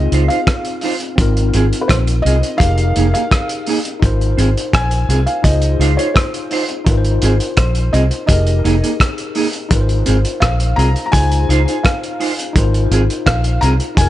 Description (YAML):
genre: lovers rock reggae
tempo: 84 BPM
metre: 4/4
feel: straight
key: Ab major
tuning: A4 = 440 Hz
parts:
  - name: felt-muted upright piano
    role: melody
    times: 0.0-14.1 s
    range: Cb5 to Bb5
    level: -22 LUFS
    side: equal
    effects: tape echo
  - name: tine electric piano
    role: accompaniment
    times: 0.0-14.1 s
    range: C4 to C5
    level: -23 LUFS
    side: left 4 dB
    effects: overdrive, medium stereo tremolo, tape echo
  - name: vintage muted fingered electric bass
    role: bass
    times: 0.0-14.1 s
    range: F1 to Db2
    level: -15 LUFS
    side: equal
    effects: none
  - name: mellow electric guitar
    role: stabs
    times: 0.1-13.8 s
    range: Bb3 to C5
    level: -20 LUFS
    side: right 4 dB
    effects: none
  - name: cloth-damped thuddy drum kit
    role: drums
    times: 0.1-14.1 s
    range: hi-hat, kick drum, rim click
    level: -17 LUFS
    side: equal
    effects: none
room: studio reverb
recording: nothing above 10.8 kHz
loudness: -13 LUFS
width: side -14 dB against mid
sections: 0.0-14.1 A section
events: none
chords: 0.0 Dbmaj9; 1.2 Ab6; 2.6 Fm11; 4.0 Ab6; 5.4 Dbmaj9; 6.9 Ab6; 8.3 Fm11; 9.7 Ab6; 11.1 Dbmaj9; 12.6 Ab6